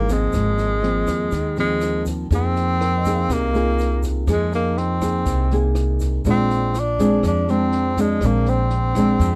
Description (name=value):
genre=bossa nova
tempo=122 BPM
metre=4/4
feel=straight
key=F minor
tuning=A4 = 439 Hz
part: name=breathy tenor saxophone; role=melody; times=0.0-9.4 s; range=Ab3 to D4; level=-25 LUFS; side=equal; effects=none
part: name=nylon-string guitar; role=accompaniment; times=0.0-9.4 s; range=Ab2 to Ab4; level=-24 LUFS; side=equal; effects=none
part: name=warm baby grand piano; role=accompaniment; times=0.0-9.4 s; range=Eb4 to F5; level=-35 LUFS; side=equal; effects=none
part: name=upright bass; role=bass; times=0.0-9.4 s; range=Ab1 to F2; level=-25 LUFS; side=equal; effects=none
part: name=compact cocktail drum kit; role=drums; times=0.1-9.3 s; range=kick drum, rim click, snare drum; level=-31 LUFS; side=equal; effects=none
part: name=tube shaker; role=percussion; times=0.1-9.4 s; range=none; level=-47 LUFS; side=equal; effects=none
room=light reverb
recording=dry, close 1970s-style studio recording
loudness=-20 LUFS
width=mono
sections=0.0-2.3 A section; 2.3-9.4 B section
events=none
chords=0.3 Ab69; 2.3 Fm7; 6.2 Bb9